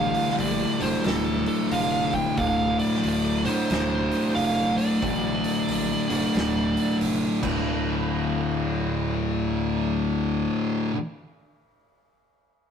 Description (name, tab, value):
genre	stoner and doom metal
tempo	91 BPM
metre	4/4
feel	swing 63% on 8ths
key	D minor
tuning	A4 = 444 Hz
part	fuzz lead guitar	melody	0.0-7.0 s	A4 to G5	-28 LUFS	right 3 dB	distortion
part	string machine, violas	sustained chords	0.0-2.4 s	D3 to G3	-35 LUFS	left 1 dB	none
part	thick fuzz guitar	riff	0.0-11.0 s	D2 to D3	-26 LUFS	left 6 dB	distortion
part	thick fuzz guitar	riff	0.0-11.0 s	D2 to D3	-28 LUFS	right 7 dB	distortion
part	growling fingered electric bass	bass	0.0-10.4 s	D1 to Bb1	-33 LUFS	right 1 dB	overdrive
part	oversized low-tuned drum kit	drums	0.1-7.5 s	crash cymbal, hi-hat, kick drum, snare drum	-32 LUFS	right 1 dB	none
room	moderate stone room reverb, RT60 1.2 s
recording	rough rehearsal-room recording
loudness	-22 LUFS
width	side -7 dB against mid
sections	0.0-7.7 A section; 7.7-10.3 B section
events	drum fill 7.3-7.7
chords	0.0 Dm; 7.3 D5